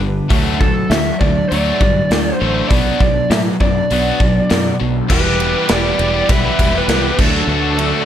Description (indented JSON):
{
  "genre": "classic rock",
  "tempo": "100 BPM",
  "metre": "4/4",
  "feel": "straight",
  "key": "E minor",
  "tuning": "A4 = 440 Hz",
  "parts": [
    { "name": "picked twelve-string acoustic guitar", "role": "accompaniment", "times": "0.0-8.1 s", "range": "E2 to G4", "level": "-28 LUFS", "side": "left 5 dB", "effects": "none" },
    { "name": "sludgy distorted guitar", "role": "riff", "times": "0.0-8.1 s", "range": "G2 to E4", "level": "-22 LUFS", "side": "right 10 dB", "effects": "overdrive" },
    { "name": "tight distorted guitar", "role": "riff", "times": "0.0-8.1 s", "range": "E2 to G4", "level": "-21 LUFS", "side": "left 10 dB", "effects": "distortion" },
    { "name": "fingered electric bass", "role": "bass", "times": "0.0-7.9 s", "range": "E1 to A2", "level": "-20 LUFS", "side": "equal", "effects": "none" },
    { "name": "gated 80s drum kit", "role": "drums", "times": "0.3-7.9 s", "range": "crash cymbal, hi-hat, kick drum, ride cymbal, snare drum", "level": "-17 LUFS", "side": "equal", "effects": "none" },
    { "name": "lead guitar through a small cranked amp", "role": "melody", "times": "0.6-8.1 s", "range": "A4 to E5", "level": "-20 LUFS", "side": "equal", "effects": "overdrive, analog delay" },
    { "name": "tonewheel organ", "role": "sustained chords", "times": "4.8-8.1 s", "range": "F#3 to D5", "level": "-29 LUFS", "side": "equal", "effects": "none" },
    { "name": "octave-fuzz lead guitar", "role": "second line", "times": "5.1-8.1 s", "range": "D4 to B4", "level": "-24 LUFS", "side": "right 5 dB", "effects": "distortion" }
  ],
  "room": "light reverb, small room ambience",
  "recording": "none",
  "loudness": "-12 LUFS",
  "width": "side -10 dB against mid",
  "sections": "0.0-5.1 A section; 5.1-8.1 B section",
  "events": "none",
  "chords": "0.3 D; 2.7 Bm; 5.1 Em; 7.2 D"
}